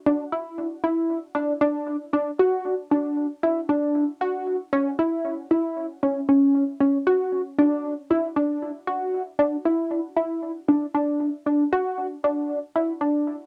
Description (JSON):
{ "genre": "progressive instrumental, progressive", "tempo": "232 BPM (eighths)", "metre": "9/8", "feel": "straight", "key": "unclear", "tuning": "A4 = 440 Hz", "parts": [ { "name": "tight sequenced synth", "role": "solo", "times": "0.1-13.4 s", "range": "C#4 to F#4", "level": "-24 LUFS", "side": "equal", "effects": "chorus, analog delay" } ], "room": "moderate booth ambience, RT60 0.2 s", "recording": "home recording on cassette", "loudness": "-24 LUFS", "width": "mono", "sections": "0.0-13.5 A section", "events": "none", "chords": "none" }